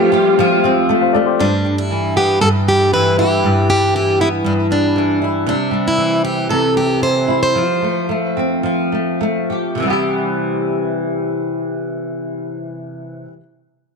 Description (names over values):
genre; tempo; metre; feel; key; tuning
acoustic pop; 100-118 BPM; 4/4; straight; C major; A4 = 440 Hz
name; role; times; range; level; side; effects
picked plugged-in steel-string acoustic guitar; melody; 0.0-9.2 s; D4 to C5; -16 LUFS; equal; tape echo
flamenco guitar; accompaniment; 0.0-13.4 s; G2 to G4; -17 LUFS; equal; double-tracked left and right
warm upright piano; accompaniment; 0.0-1.5 s; G3 to F5; -21 LUFS; left 12 dB; none
warm studio string section; sustained chords; 0.0-1.4 s; G3 to F4; -22 LUFS; right 12 dB; none
room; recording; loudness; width
moderate echo chamber reverb, RT60 1.5 s, small room ambience; 1960s-style stereo with parts hard left and right; -14 LUFS; side -5 dB against mid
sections
0.0-1.4 A section; 1.4-9.8 B section; 9.8-14.0 C section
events
slowing down 5.5-9.8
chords
0.0 Fadd9; 1.4 G6; 5.5 C; 7.5 Fadd9; 9.8 Cmaj7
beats
0.37 0.88 | 1.39 1.90 2.41 2.92 | 3.43 3.94 4.45 4.96 | 5.47 5.98 6.49 7.01 | 7.55 8.09 8.64 9.21 | 9.80 10.40 11.00 11.60 | 12.20 12.80 13.40